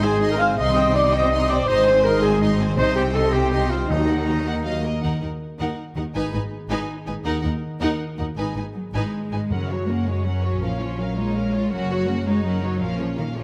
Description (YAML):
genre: cinematic, heroic adventure film score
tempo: 108 BPM (dotted quarters)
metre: 6/8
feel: straight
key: F# major from 9.5 s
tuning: A4 = 440 Hz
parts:
  - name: warm symphonic violin section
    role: melody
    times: 0.0-13.4 s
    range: C#5 to C6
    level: -37 LUFS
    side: equal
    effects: none
  - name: clear oboe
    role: second line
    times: 0.0-4.9 s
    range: Eb4 to F5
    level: -31 LUFS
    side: equal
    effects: none
  - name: mellow hollow large flute ensemble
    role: second line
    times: 0.0-4.8 s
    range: Eb5 to F6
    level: -32 LUFS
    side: equal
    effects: none
  - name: rich symphonic violin section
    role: second line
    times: 0.0-13.4 s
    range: C#4 to Eb5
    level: -35 LUFS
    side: equal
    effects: none
  - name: warm symphonic viola section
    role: accompaniment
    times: 0.0-13.4 s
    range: Gb3 to C#5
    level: -32 LUFS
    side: equal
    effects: none
  - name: dark French horn section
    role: sustained chords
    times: 0.0-4.8 s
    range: Eb4 to F5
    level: -23 LUFS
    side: equal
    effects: none
  - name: concert harp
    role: arpeggios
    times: 0.0-13.4 s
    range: F#2 to Bb5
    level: -34 LUFS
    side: equal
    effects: none
  - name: rich symphonic double bass section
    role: bass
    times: 0.0-13.4 s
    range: F#1 to F#2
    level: -29 LUFS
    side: equal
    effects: none
  - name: warm symphonic cello section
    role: bass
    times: 0.0-13.4 s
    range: Eb2 to A#3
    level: -28 LUFS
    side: equal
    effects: none
  - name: timpani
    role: percussion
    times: 3.9-5.6, 9.5-10.0 s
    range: F#2 to Eb3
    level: -33 LUFS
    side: equal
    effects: none
room: moderate scoring stage reverb, RT60 1.6 s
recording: none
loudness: -22 LUFS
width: mono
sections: 0.0-5.0 A section; 5.0-9.5 B section; 9.5-13.4 C section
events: none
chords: 0.0 Ab; 0.6 Cm; 1.7 Ab; 2.8 Cm; 3.9 Ebm; 6.2 Abm; 7.3 Ebm; 8.4 Abm; 9.5 F#; 10.6 A#m; 11.7 F#; 12.8 A#m